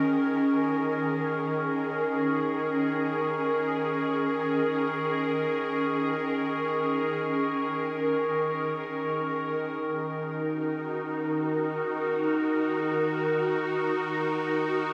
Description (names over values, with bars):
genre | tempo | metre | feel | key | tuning
ambient | free time | none | none | Eb minor | A4 = 440 Hz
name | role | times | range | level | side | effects
evolving wavetable pad | sustained chords | 0.0-14.9 s | Eb3 to Bb4 | -28 LUFS | equal | ensemble chorus, built-in reverb
organ-like drone | drone | 0.1-14.9 s | Eb3 | -41 LUFS | equal | ensemble chorus, built-in reverb
glass harmonica | texture | 0.0-9.8 s | Db6 | -38 LUFS | equal | none
room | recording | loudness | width
wet spring reverb, RT60 2.4 s | none | -28 LUFS | mono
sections
0.0-9.8 A section; 9.8-14.9 B section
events
filter sweep on ambient pad 0.0-9.8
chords
0.0 Bbm7/Eb; 9.8 Ebm